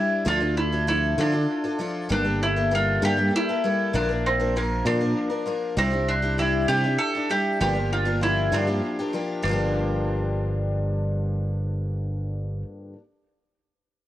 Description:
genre	folk rock and heartland rock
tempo	65 BPM (dotted quarters)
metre	6/8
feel	straight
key	G dorian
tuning	A4 = 445 Hz
part	bowl-back mandolin	melody	0.0-12.6 s	Bb3 to A4	-25 LUFS	right 1 dB	cassette tape, analog delay
part	picked twelve-string acoustic guitar	accompaniment	0.0-13.0 s	G2 to Bb4	-27 LUFS	left 2 dB	cassette tape
part	modern bright fingered electric bass	bass	0.3-12.6 s	G1 to D3	-26 LUFS	right 1 dB	none
room	light reverb, studio ambience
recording	home recording on cassette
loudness	-22 LUFS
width	side -13 dB against mid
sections	0.0-9.4 A section; 9.4-13.1 B section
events	none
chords	0.3 Dm; 2.1 Gmadd9; 3.9 Bb; 5.8 Cadd9; 7.6 Gm7

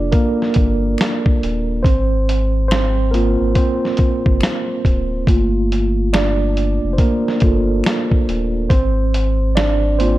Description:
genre	lo-fi hip hop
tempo	70 BPM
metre	4/4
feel	swing 63% on 16ths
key	unclear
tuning	A4 = 440 Hz
part	mellow tine electric piano	accompaniment	0.0-10.2 s	A3 to D5	-18 LUFS	right 2 dB	medium stereo tremolo, cassette tape, low-pass filter
part	warm sub bass	bass	0.0-10.2 s	D1 to Ab1	-19 LUFS	equal	none
part	lo-fi sampler-style drum kit	drums	0.1-10.2 s	hi-hat, kick drum, snare drum	-17 LUFS	equal	none
part	finger snaps	percussion	1.0-9.8 s	none	-33 LUFS	left 2 dB	none
room	little or no reverb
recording	dark, warm production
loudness	-14 LUFS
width	side -16 dB against mid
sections	0.0-10.2 A section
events	tine electric piano solo 0.0-10.2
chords	0.0 Gm9; 1.8 Ab6; 5.3 Gm9; 8.7 Ab

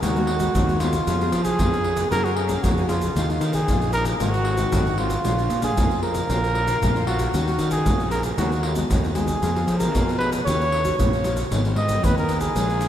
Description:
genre	samba and choro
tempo	115 BPM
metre	4/4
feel	straight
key	unclear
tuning	A4 = 440 Hz
part	breathy trumpet	melody	0.0-12.9 s	F4 to Eb5	-24 LUFS	right 1 dB	tape echo
part	nylon-string guitar	accompaniment	0.0-12.9 s	F2 to Ab4	-27 LUFS	left 3 dB	none
part	fuzz fingered electric bass	bass	0.0-12.9 s	Ab1 to F3	-25 LUFS	equal	overdrive
part	tube shaker, surdo and pandeiro	percussion	0.0-12.9 s	none	-25 LUFS	equal	none
room	moderate lush hall reverb, RT60 2.8 s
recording	dreamy mix soaked in reverb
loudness	-19 LUFS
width	side -10 dB against mid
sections	0.0-12.9 A section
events	none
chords	0.0 Abm7/Eb; 1.1 Db7/F; 2.1 Gbadd9; 3.2 Ebsus2; 4.2 Ab; 5.2 Bb; 7.3 Ebm7; 8.4 Abm7/Eb; 9.4 Fdim; 10.5 Ebm7; 11.5 Abm

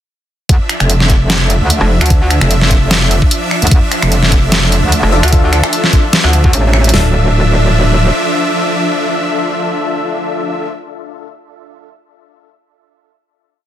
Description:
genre	heavy wobble dubstep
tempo	149 BPM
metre	4/4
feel	swing 54% on 16ths, half-time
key	D minor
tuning	A4 = 440 Hz
part	supersaw chords	sustained chords	0.5-10.7 s	F3 to E5	-17 LUFS	right 1 dB	sidechain pumping
part	metallic wobble bass	bass	0.5-8.1 s	D1 to D2	-12 LUFS	equal	chorus, overdrive
part	dubstep drum kit	drums	0.5-7.0 s	hi-hat, kick drum, snare drum, toms	-11 LUFS	equal	none
part	dubstep drum kit	drums	0.5-7.0 s	finger snaps, hi-hat, snare drum	-14 LUFS	equal	overdrive
part	metallic wobble bass	bass	1.8-2.4, 5.0-6.9 s	F1 to D2	-10 LUFS	equal	chorus, overdrive
part	supersaw stab	stabs	5.1-10.7 s	D4 to E5	-18 LUFS	left 3 dB	ping-pong delay
room	little or no reverb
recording	dense, heavily limited modern master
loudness	-9 LUFS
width	side -11 dB against mid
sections	0.5-6.9 drop; 6.9-10.2 final chord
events	drop 0.5-6.9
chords	0.5 Dmadd9

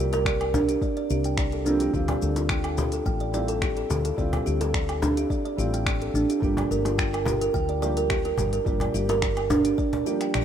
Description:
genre	organic downtempo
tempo	107 BPM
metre	4/4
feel	swing 53% on 16ths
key	G dorian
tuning	A4 = 439 Hz
part	felt-muted upright piano	accompaniment	0.0-10.4 s	F3 to Bb4	-34 LUFS	right 2 dB	sidechain pumping, ping-pong delay
part	kalimba	arpeggios	0.0-10.4 s	D4 to G5	-25 LUFS	right 2 dB	ping-pong delay
part	woody fretless electric bass	bass	0.0-10.4 s	G1 to D2	-28 LUFS	left 1 dB	sidechain pumping
part	organic electronic drum kit	drums	0.1-10.4 s	finger snaps, hi-hat, shaker, woodblock	-33 LUFS	left 1 dB	overdrive
part	cajon	percussion	0.1-10.0 s	none	-32 LUFS	left 2 dB	none
part	electronic kick drum	drums	0.3-9.9 s	none	-29 LUFS	left 1 dB	overdrive
room	light reverb, digital ambience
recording	rough home demo mix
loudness	-22 LUFS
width	side -9 dB against mid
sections	0.0-10.4 A section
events	none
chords	0.0 C7sus4; 1.9 Dm11; 6.4 Gm7

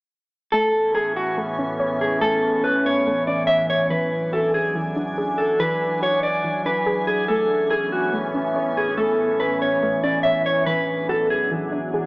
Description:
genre	hip hop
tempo	142 BPM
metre	4/4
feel	half-time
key	A major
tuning	A4 = 440 Hz
part	mellow electric guitar	melody	0.5-11.5 s	F#4 to E5	-20 LUFS	equal	spring reverb, low-pass filter, analog delay
part	glassy FM pad	sustained chords	0.9-12.1 s	E2 to G#5	-25 LUFS	equal	ensemble chorus, built-in reverb
part	soft round pluck	arpeggios	0.5-12.1 s	E3 to C#5	-29 LUFS	equal	chorus, low-pass filter, analog delay
room	wet echo chamber reverb, RT60 1.3 s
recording	worn, warbling old tape, cassette tape, warbly pitch drift, small speaker sound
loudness	-19 LUFS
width	side -31 dB against mid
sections	0.5-12.1 A section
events	none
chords	0.5 Amaj7; 3.9 E9; 7.3 Amaj7; 10.7 E9

